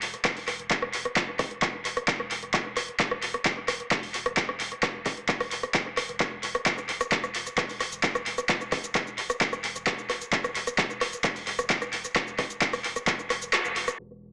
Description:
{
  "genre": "driving peak-time techno",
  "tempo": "131 BPM",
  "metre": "4/4",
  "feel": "straight",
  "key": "unclear",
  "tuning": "A4 = 440 Hz",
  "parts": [
    { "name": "saturated sub bass", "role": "bass", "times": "0.0-14.3 s", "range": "E1", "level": "-52 LUFS", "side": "equal", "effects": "tube saturation, sidechain pumping, low-pass filter" },
    { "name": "punchy analog drum machine", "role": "drums", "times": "0.0-14.0 s", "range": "handclaps, hi-hat, rim click, shaker", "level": "-26 LUFS", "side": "equal", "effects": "overdrive, tape echo" },
    { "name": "electronic kick drum", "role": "drums", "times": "0.2-13.2 s", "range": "none", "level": "-30 LUFS", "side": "equal", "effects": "none" }
  ],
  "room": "wet spring reverb, RT60 1.7 s, digital ambience",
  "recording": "echo-heavy mix, low-pass filter, small speaker sound",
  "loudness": "-25 LUFS",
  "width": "side -28 dB against mid",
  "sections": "0.0-14.0 A section",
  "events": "kick drops out 13.5-14.0; band accent 13.5",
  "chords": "none"
}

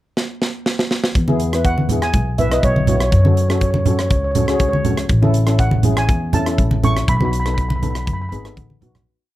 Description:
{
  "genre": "calypso",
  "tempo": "121 BPM",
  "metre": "4/4",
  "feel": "straight",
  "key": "E major",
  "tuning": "A4 = 440 Hz",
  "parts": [
    { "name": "tight metal drum kit", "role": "drums", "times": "0.2-9.1 s", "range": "hi-hat, kick drum, rim click, snare drum", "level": "-20 LUFS", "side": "equal", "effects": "none" },
    { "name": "upright bass", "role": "bass", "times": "1.1-9.0 s", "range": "G#1 to F#2", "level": "-18 LUFS", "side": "equal", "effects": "none" },
    { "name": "steel pan", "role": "accompaniment", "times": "1.3-9.0 s", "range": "B3 to B4", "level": "-23 LUFS", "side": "left 2 dB", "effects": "none" },
    { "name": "congas", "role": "percussion", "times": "1.3-9.1 s", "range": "none", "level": "-20 LUFS", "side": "right 2 dB", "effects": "none" },
    { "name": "steel pan", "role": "melody", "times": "1.7-8.4 s", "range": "C#5 to C#6", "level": "-23 LUFS", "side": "right 1 dB", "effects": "none" }
  ],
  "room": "light reverb",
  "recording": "close, detailed microphones",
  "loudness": "-15 LUFS",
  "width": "side -15 dB against mid",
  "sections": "0.0-1.2 pickup bar; 1.2-9.1 verse",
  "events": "drum fill 0.2-1.2, 8.6-9.1; fade-out 7.1-9.1",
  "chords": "0.0 N.C.; 1.2 E; 3.1 F#m; 5.1 A; 7.1 B"
}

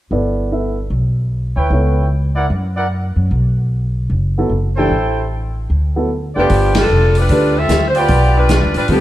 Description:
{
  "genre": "jazz, big band swing",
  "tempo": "150 BPM",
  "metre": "4/4",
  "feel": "swing 64% on 8ths",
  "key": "G mixolydian",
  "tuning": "A4 = 440 Hz",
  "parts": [
    { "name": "dark concert grand piano", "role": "accompaniment", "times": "0.1-2.0, 4.4-9.0 s", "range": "E3 to E5", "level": "-19 LUFS", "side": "right 1 dB", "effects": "none" },
    { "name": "upright bass", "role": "bass", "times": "0.1-9.0 s", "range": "F1 to F#2", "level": "-16 LUFS", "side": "equal", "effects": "none" },
    { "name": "mellow trumpet section", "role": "stabs", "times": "1.6-8.5 s", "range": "E4 to G5", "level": "-20 LUFS", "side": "right 1 dB", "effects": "none" },
    { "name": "bright saxophone section", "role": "melody", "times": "6.4-9.0 s", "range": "F3 to E5", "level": "-16 LUFS", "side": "left 1 dB", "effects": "none" },
    { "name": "vintage drum kit", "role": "drums", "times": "6.5-9.0 s", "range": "hi-hat, kick drum, ride cymbal, snare drum", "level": "-19 LUFS", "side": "equal", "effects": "none" }
  ],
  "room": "light reverb",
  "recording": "heard from further back in the room",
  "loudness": "-13 LUFS",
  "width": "side -14 dB against mid",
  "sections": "0.1-6.5 A section; 6.5-9.0 B section",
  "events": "band accent 6.7",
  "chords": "0.1 Gadd9; 1.7 C#m7b5; 2.5 F#7b13; 3.3 B7(no3); 4.9 Am7; 5.7 D69; 6.5 G7"
}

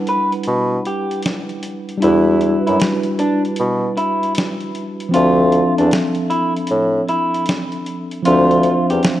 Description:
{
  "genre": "lo-fi hip hop",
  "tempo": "77 BPM",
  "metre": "4/4",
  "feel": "swing 65% on 16ths",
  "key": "E phrygian",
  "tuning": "A4 = 440 Hz",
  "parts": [
    { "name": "tine electric piano", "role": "accompaniment", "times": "0.0-9.2 s", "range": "F3 to F#5", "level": "-19 LUFS", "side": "equal", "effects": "medium stereo tremolo, cassette tape" },
    { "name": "electric guitar through a small old amp", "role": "melody", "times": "0.1-9.0 s", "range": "D4 to B4", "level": "-20 LUFS", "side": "left 1 dB", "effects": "none" },
    { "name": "dusty soul sampler-style drum kit", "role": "drums", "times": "0.1-9.2 s", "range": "hi-hat, snare drum", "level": "-23 LUFS", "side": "equal", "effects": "vintage 12-bit sampler grit" },
    { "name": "mellow bassoon", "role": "bass", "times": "0.5-9.0 s", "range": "D2 to B2", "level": "-17 LUFS", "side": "equal", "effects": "none" }
  ],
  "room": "light reverb, digital ambience",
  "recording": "rough home demo mix",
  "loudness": "-14 LUFS",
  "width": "side -13 dB against mid",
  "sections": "0.0-9.2 A section",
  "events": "break 0.0-9.2",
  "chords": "0.0 Em9; 5.1 Dm9"
}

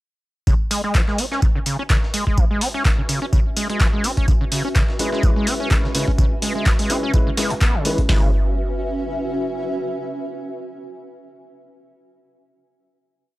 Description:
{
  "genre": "acid house",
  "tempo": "126 BPM",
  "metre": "4/4",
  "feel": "swing 55% on 16ths",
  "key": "C# minor",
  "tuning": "A4 = 440 Hz",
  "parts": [
    { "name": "overdriven acid bass", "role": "riff", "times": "0.5-8.3 s", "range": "C#2 to C#4", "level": "-24 LUFS", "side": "equal", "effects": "distortion, analog chorus, analog delay" },
    { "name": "booming analog drum machine", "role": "drums", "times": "0.5-8.2 s", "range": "hi-hat, kick drum, snare drum", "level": "-18 LUFS", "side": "equal", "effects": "none" },
    { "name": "breakbeat sampler-style drum kit", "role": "drums", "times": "0.5-8.1 s", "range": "hi-hat, snare drum, tambourine", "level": "-32 LUFS", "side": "equal", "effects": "sidechain pumping on perc, high-pass filter on perc, high-pass filter on snare, sidechain pumping on hats, high-pass filter on hats, high-pass filter on room" },
    { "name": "granular cloud pad", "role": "texture", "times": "2.6-10.0 s", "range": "C#4 to G#5", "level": "-28 LUFS", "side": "equal", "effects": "built-in reverb, sidechain pumping" },
    { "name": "booming analog drum machine", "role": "drums", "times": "0.7-8.0 s", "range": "handclaps, hi-hat", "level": "-25 LUFS", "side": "equal", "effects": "none" },
    { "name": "warm grand piano", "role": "stabs", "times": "5.0-8.3 s", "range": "G#3 to B4", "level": "-26 LUFS", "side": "left 1 dB", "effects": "vintage 12-bit sampler grit, analog delay" }
  ],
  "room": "light reverb",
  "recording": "dry, gritty hardware recording, transformer saturation",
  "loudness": "-17 LUFS",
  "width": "side -18 dB against mid",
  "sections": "0.5-8.1 groove; 8.1-10.0 final chord",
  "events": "fade-in on ambient pad 0.5-8.1; band accent 7.6",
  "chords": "0.5 C#m7"
}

